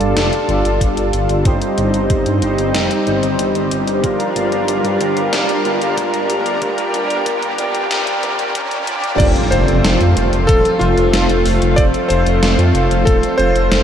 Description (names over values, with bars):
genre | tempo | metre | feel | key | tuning
synthwave | 93 BPM | 4/4 | straight | unclear | A4 = 442 Hz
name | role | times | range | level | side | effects
lush unison pad | sustained chords | 0.0-13.8 s | G3 to Bb4 | -18 LUFS | equal | chorus, sidechain pumping, shimmer reverb
analog synth brass | stabs | 0.0-13.8 s | F3 to D5 | -22 LUFS | right 1 dB | chorus, analog delay, shimmer reverb
wide detuned saw bass | bass | 0.0-13.8 s | Eb1 to G2 | -19 LUFS | equal | chorus, sidechain pumping
gated 80s digital drum machine | drums | 0.0-13.8 s | crash cymbal, hi-hat, snare drum | -23 LUFS | equal | gated reverb, gated reverb snare, high-pass filter on hats, small room reverb, high-pass filter on snare, high-pass filter on toms, high-pass filter on cymbals
riser and impact | sound effects | 1.7-11.8 s | none | -27 LUFS | equal | none
electronic kick drum | drums | 0.8-13.2 s | none | -16 LUFS | equal | small room reverb
bright electric grand piano | melody | 9.2-13.8 s | F4 to D5 | -18 LUFS | equal | analog delay, shimmer reverb
room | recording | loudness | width
wet huge ambient reverb, RT60 8.1 s | dreamy mix soaked in reverb, high-pass filter | -13 LUFS | side -9 dB against mid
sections
0.0-9.2 A section; 9.2-13.8 B section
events
filter sweep 0.0-9.2; riser 1.7-9.2; impact 9.2-11.8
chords
0.0 Dm; 1.5 Cm/G; 4.0 Gm7; 9.2 F